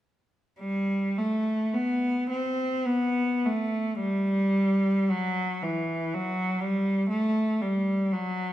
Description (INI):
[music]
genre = classical, free, expressive piece for unaccompanied cello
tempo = 51-62 BPM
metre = 3/4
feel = rubato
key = G major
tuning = A4 = 439 Hz
[part]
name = clear cello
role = solo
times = 0.6-8.5 s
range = E3 to C4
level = -24 LUFS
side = equal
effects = none
[sound]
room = wet stone room reverb, RT60 1.3 s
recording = none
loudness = -24 LUFS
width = side -13 dB against mid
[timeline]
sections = 0.6-8.5 A section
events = none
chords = none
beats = | 0.60 1.75 2.87 | 3.99 5.09 6.12 | 7.10 8.13